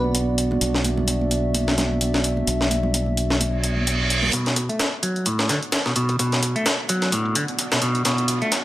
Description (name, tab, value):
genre	breakbeat, breaks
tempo	129 BPM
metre	4/4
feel	swing 56% on 16ths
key	B minor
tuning	A4 = 439 Hz
part	dark analog pad	sustained chords	0.0-8.6 s	B3 to F#5	-27 LUFS	equal	chorus, sidechain pumping
part	modern bright fingered electric bass	bass	0.0-8.6 s	F#1 to B1	-27 LUFS	equal	tube saturation, high-pass filter
part	congas	percussion	0.0-4.3 s	none	-30 LUFS	right 1 dB	none
part	breakbeat sampler-style drum kit	drums	0.1-8.6 s	hi-hat, kick drum, snare drum	-23 LUFS	equal	high-pass filter on snare, small room ambience, high-pass filter on hats, high-pass filter on kick
part	reverse cymbal and riser	sound effects	3.6-8.6 s	none	-28 LUFS	right 3 dB	none
part	semi-hollow electric guitar	riff	4.3-8.5 s	A2 to A3	-22 LUFS	equal	tube saturation, vintage 12-bit sampler grit, low-pass filter, tape echo
part	electronic hi-hat	drums	4.3-8.6 s	none	-30 LUFS	right 2 dB	high-pass filter on hats, low-pass filter on hats, small room ambience, high-pass filter on room, low-pass filter on room
room	light reverb, digital ambience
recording	high-pass filter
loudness	-19 LUFS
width	side -15 dB against mid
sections	0.0-4.3 A section; 4.3-8.6 B section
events	reverse cymbal 3.6-4.3; build-up 4.3-8.6; filter sweep on clean electric guitar 4.3-8.6; drum fill 8.1-8.6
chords	0.0 Bm